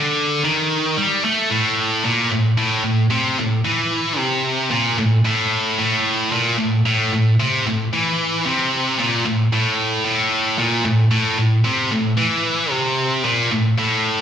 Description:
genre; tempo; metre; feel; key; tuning
rock; 112 BPM; 4/4; straight; A minor; A4 = 440 Hz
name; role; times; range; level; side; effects
heavy high-gain guitar; solo; 0.0-14.2 s; A2 to A3; -16 LUFS; equal; distortion, slapback echo
room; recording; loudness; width
light reverb; live gig heard through the venue's PA, recital hall reverb, nothing above 10.6 kHz; -16 LUFS; side -8 dB against mid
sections
0.0-1.5 A section; 1.5-14.2 B section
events
none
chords
none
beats
0.43 0.97 | 1.50 2.04 2.57 3.11 | 3.64 4.18 4.71 5.25 | 5.78 6.32 6.85 7.38 | 7.92 8.45 8.98 9.52 | 10.05 10.58 11.11 11.64 | 12.18 12.71 13.24 13.77

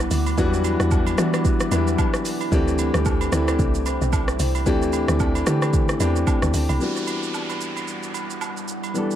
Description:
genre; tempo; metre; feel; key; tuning
amapiano; 112 BPM; 4/4; swing 58% on 16ths; E minor; A4 = 440 Hz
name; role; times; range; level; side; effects
warm grand piano; accompaniment; 0.0-9.2 s; E3 to A4; -24 LUFS; left 2 dB; dub echo
deep dark ambient pad; sustained chords; 0.0-9.2 s; G3 to D6; -31 LUFS; right 3 dB; chorus, built-in reverb
woody log drum bass; bass; 0.0-6.8 s; B1 to E3; -23 LUFS; right 1 dB; none
deep house drum kit; drums; 0.0-9.2 s; hi-hat, kick drum, rim click, shaker; -24 LUFS; right 1 dB; dub echo
agogo bells and woodblock; percussion; 0.3-8.9 s; none; -33 LUFS; right 6 dB; none
downlifter; sound effects; 6.8-9.2 s; none; -32 LUFS; right 1 dB; none
room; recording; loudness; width
light reverb, digital ambience; echo-heavy mix; -19 LUFS; side -11 dB against mid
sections
0.0-6.8 A section; 6.8-9.2 B section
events
drop 0.0-6.8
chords
0.0 Em9; 2.5 D9sus4; 6.8 Em9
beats
| 0.38 0.91 1.45 1.99 | 2.52 3.06 3.59 4.13 | 4.66 5.20 5.74 6.27 | 6.81 7.34 7.88 8.41 | 8.95

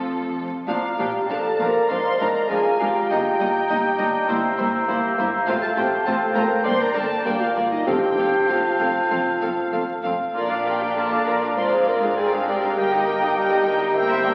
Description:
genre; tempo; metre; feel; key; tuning
quick classical-period movement for symphony orchestra; 100 BPM; 4/4; rubato; Bb major; A4 = 440 Hz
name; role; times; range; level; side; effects
clear studio violin section; melody; 0.0-14.3 s; A4 to G5; -32 LUFS; equal; none
rich studio violin section; second line; 0.0-14.3 s; F4 to C6; -33 LUFS; equal; none
warm studio viola section; accompaniment; 0.0-14.3 s; F3 to D5; -30 LUFS; equal; none
mellow French horn section; sustained chords; 0.0-14.3 s; C4 to C5; -26 LUFS; equal; none
clear studio cello section; bass; 0.0-14.3 s; F2 to Bb2; -35 LUFS; equal; none
rich studio double bass section; bass; 0.0-14.3 s; F1 to Bb1; -42 LUFS; equal; none
mellow hollow silver concert flute; second line; 0.7-14.3 s; G5 to Bb5; -31 LUFS; equal; none
warm clarinet; second line; 0.7-14.3 s; C5 to Eb5; -32 LUFS; equal; none
warm oboe; second line; 0.7-14.3 s; E5 to G5; -33 LUFS; equal; none
clear bassoon; accompaniment; 0.7-14.3 s; F3 to F4; -31 LUFS; equal; none
timpani; percussion; 7.9-8.8 s; F2; -37 LUFS; equal; none
room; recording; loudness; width
wet concert hall reverb, RT60 2.1 s; very old 78 rpm record, vinyl crackle; -21 LUFS; mono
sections
0.7-14.3 A section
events
none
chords
0.0 F; 0.7 Bb; 1.9 Bb7/Ab; 3.1 Eb/G; 4.3 C7/G; 5.5 F/A; 6.7 Gm; 7.9 F; 10.3 Bb; 11.6 Bb7/Ab; 12.8 Eb/G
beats
0.05 | 0.68 1.30 1.90 2.50 | 3.10 3.69 4.28 4.88 | 5.47 6.06 6.65 7.26 | 7.87 8.49 9.11 9.73 | 10.35 10.97 11.58 12.18 | 12.77 13.37 13.95

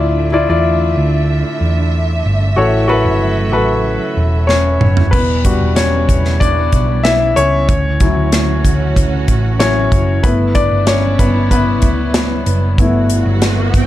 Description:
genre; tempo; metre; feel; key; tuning
piano-driven pop; 94 BPM; 4/4; straight; unclear; A4 = 438 Hz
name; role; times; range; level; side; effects
clear grand piano; accompaniment; 0.0-13.9 s; A2 to E5; -16 LUFS; left 3 dB; none
warm studio string section; sustained chords; 0.0-13.9 s; C#3 to E5; -23 LUFS; right 5 dB; none
hollow-body short-scale picked electric bass; bass; 0.0-13.9 s; E1 to E2; -16 LUFS; equal; none
modern studio drum kit; drums; 4.5-13.9 s; crash cymbal, hi-hat, kick drum, snare drum, toms; -16 LUFS; equal; none
riser; sound effects; 13.2-13.9 s; none; -23 LUFS; right 3 dB; none
room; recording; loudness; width
light reverb; dark, warm production; -11 LUFS; side -14 dB against mid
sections
0.0-5.1 A section; 5.1-13.9 B section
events
drum fill 4.5-5.1; grand piano solo 5.1-13.9; riser 13.2-13.9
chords
0.0 Dmadd9; 2.6 A6; 5.1 Em7; 7.7 Dmaj7; 10.2 G6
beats
| 0.01 0.65 1.29 1.93 | 2.57 3.21 3.85 4.49 | 5.13 5.77 6.41 7.05 | 7.68 8.32 8.96 9.60 | 10.24 10.87 11.51 12.15 | 12.79 13.42

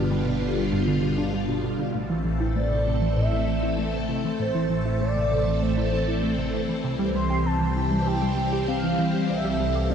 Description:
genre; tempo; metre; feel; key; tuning
ambient, sequencer-driven space music; 98 BPM; 4/4; straight; A minor; A4 = 440 Hz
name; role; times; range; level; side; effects
expressive synth lead; melody; 0.0-9.9 s; B4 to C6; -30 LUFS; equal; analog chorus, shimmer reverb, ping-pong delay
phased string machine; sustained chords; 0.0-9.9 s; B2 to A4; -26 LUFS; equal; ensemble chorus, phaser, shimmer reverb
tight sequenced synth; riff; 0.0-9.9 s; G2 to G4; -28 LUFS; right 1 dB; chorus, ping-pong delay
fat analog bass; bass; 0.0-9.9 s; G1 to C2; -28 LUFS; equal; none
room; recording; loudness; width
wet lush hall reverb, RT60 2.9 s; dark, warm production; -22 LUFS; side -8 dB against mid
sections
0.0-1.9 A section; 1.9-9.9 B section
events
none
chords
0.0 G; 1.9 Am; 6.8 C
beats
0.11 0.72 1.33 | 1.95 2.56 3.17 3.78 | 4.40 5.01 5.62 6.23 | 6.84 7.46 8.07 8.68 | 9.29 9.91

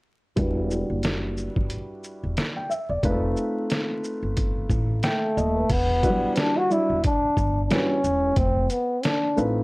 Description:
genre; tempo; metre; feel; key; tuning
hip hop, jazz-hop; 90 BPM; 4/4; swing 58% on 16ths; unclear; A4 = 438 Hz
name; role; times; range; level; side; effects
dark upright piano; accompaniment; 0.4-9.6 s; F#3 to G5; -27 LUFS; equal; low-pass filter
upright bass; bass; 0.4-9.6 s; Eb1 to A1; -27 LUFS; equal; none
trip hop sampler-style drum kit; drums; 0.4-9.6 s; crash cymbal, hi-hat, kick drum, shaker, snare drum; -26 LUFS; equal; none
breathy trombone; melody; 5.1-9.4 s; A3 to F#4; -23 LUFS; equal; none
room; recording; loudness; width
small room ambience; dry, gritty hardware recording, vinyl crackle; -21 LUFS; side -23 dB against mid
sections
0.4-5.7 A section; 5.7-9.6 B section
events
filter sweep on upright piano 0.4-5.7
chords
0.4 Em9; 3.0 F7#11; 5.7 Em9; 8.4 F7#11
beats
| 0.37 1.03 1.70 2.37 | 3.03 3.70 4.37 5.03 | 5.70 6.37 7.03 7.70 | 8.37 9.03

